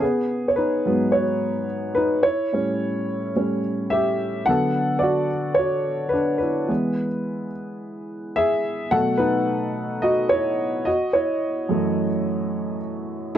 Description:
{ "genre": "pop", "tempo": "108 BPM", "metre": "4/4", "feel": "straight", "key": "unclear", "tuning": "A4 = 440 Hz", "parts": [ { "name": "dark upright piano", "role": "solo", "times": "0.0-13.4 s", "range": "F#2 to F#5", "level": "-20 LUFS", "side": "equal", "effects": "none" } ], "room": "light reverb", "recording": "dry, close 1970s-style studio recording", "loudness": "-20 LUFS", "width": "side -10 dB against mid", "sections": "0.0-4.5 A section; 4.5-13.4 B section", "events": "upright piano solo 0.0-4.5, 4.5-13.4", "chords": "0.0 G#m7; 2.2 A7; 4.5 D6; 6.7 E; 8.9 B7; 10.9 F#m7", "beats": "| 0.01 0.57 1.13 1.68 | 2.24 2.80 3.35 3.91 | 4.47 5.02 5.58 6.14 | 6.69 7.25 7.81 8.36 | 8.92 9.47 10.03 10.59 | 11.14 11.70 12.26 12.81 | 13.37" }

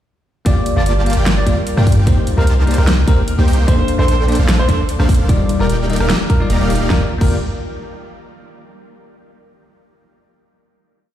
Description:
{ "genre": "future bass", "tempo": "149 BPM", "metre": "4/4", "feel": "swing 54% on 16ths, half-time", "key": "G minor", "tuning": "A4 = 439 Hz", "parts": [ { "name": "clear grand piano", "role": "melody", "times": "0.5-7.4 s", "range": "Bb4 to D5", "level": "-25 LUFS", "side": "right 1 dB", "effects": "sidechain pumping, ping-pong delay" }, { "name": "bell-like tine electric piano", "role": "accompaniment", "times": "0.5-7.4 s", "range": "G3 to F5", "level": "-23 LUFS", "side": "left 5 dB", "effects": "sidechain pumping, dub echo" }, { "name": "airy breathy pad", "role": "sustained chords", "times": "0.7-7.1 s", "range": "C3 to D5", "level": "-29 LUFS", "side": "equal", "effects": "none" }, { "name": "supersaw chords", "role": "riff", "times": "0.5-7.4 s", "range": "Bb3 to Bb5", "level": "-23 LUFS", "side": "right 1 dB", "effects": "sidechain pumping, dub echo" }, { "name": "long sustained 808-style bass", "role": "bass", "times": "0.5-7.4 s", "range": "Eb1 to G2", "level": "-15 LUFS", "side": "equal", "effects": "sidechain pumping" }, { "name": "big-room dance drum kit", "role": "drums", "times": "0.5-7.3 s", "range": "crash cymbal, hi-hat, rim click, snare drum", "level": "-23 LUFS", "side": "equal", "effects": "overdrive, small room ambience" }, { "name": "electronic kick drum", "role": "drums", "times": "0.5-7.3 s", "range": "none", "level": "-15 LUFS", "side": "equal", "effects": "small room ambience" } ], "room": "digital ambience", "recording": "played on a big sound system in a bare room, large studio reverb", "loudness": "-12 LUFS", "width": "side -11 dB against mid", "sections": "0.5-6.9 drop; 6.9-8.5 final chord", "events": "drop 0.5-6.9", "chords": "0.5 Gm7; 2.1 Cm7; 3.7 Bbmaj9; 5.3 Ebmaj9; 6.9 Gm7", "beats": "| 0.46 0.86 1.26 1.67 | 2.07 2.47 2.88 3.28 | 3.68 4.08 4.49 4.89 | 5.29 5.70 6.10 6.50 | 6.90 7.30" }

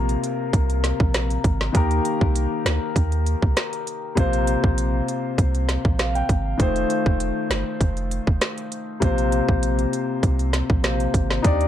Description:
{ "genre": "dancehall", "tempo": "99 BPM", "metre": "4/4", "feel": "straight", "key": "unclear", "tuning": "A4 = 440 Hz", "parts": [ { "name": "warm concert grand piano", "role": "accompaniment", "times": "0.0-11.7 s", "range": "C3 to G5", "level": "-24 LUFS", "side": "left 3 dB", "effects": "sidechain pumping, dub echo" }, { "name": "punchy sub bass", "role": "bass", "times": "0.0-11.7 s", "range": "F1 to Eb2", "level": "-23 LUFS", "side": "right 1 dB", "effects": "none" }, { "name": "island pop drum kit", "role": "drums", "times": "0.1-11.7 s", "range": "hi-hat, kick drum, rim click, snare drum", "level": "-21 LUFS", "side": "right 1 dB", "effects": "vintage 12-bit sampler grit" } ], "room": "little or no reverb", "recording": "echo-heavy mix", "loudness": "-19 LUFS", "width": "side -11 dB against mid", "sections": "0.0-11.4 A section", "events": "grand piano fill 5.7-6.6", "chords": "0.0 Bbsus2; 1.7 Eb; 4.2 Bbsus2; 6.6 F7; 9.0 Bbsus2", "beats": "0.53 1.14 | 1.75 2.35 2.96 3.56 | 4.17 4.78 5.38 5.99 | 6.59 7.20 7.81 8.41 | 9.02 9.62 10.23 10.84 | 11.44" }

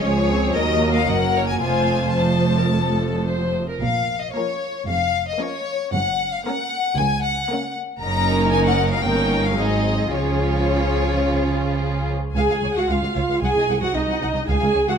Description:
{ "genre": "quick classical-period movement for string orchestra", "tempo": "106-118 BPM", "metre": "4/4", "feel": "rubato", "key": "Db major from 8.0 s", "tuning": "A4 = 440 Hz", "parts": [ { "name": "rich chamber violin section", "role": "melody", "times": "0.0-14.9 s", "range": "Db5 to Bb5", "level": "-24 LUFS", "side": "left 6 dB", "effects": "none" }, { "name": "warm chamber violin section", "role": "second line", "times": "0.0-14.9 s", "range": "Db4 to Ab5", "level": "-25 LUFS", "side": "left 2 dB", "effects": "none" }, { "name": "warm chamber viola section", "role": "accompaniment", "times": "0.0-15.0 s", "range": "F3 to Ab4", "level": "-24 LUFS", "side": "right 1 dB", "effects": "none" }, { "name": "rich symphonic cello section", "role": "bass", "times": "0.0-14.9 s", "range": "C2 to Db3", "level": "-25 LUFS", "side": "right 3 dB", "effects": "none" }, { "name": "rich symphonic double bass section", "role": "bass", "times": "0.0-14.8 s", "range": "F1 to Eb2", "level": "-25 LUFS", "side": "right 3 dB", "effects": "none" } ], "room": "moderate recital hall reverb, RT60 1.7 s", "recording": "close, detailed microphones", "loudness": "-18 LUFS", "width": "side -7 dB against mid", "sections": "0.0-12.4 A section; 12.4-15.0 B section", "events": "none", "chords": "0.0 Db; 0.6 Ebm; 1.6 F; 3.8 Bbm; 5.9 Gb; 9.0 Eb7/G; 9.6 Ab7; 10.1 Db; 13.4 Ab7/C", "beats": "0.03 0.55 1.08 | 1.61 2.16 2.71 3.26 | 3.81 4.35 4.88 5.41 | 5.93 6.46 6.98 7.50 | 8.01 8.53 9.04 9.57 | 10.12 10.68 11.24 11.79 | 12.35 12.89 13.43 13.96 | 14.49" }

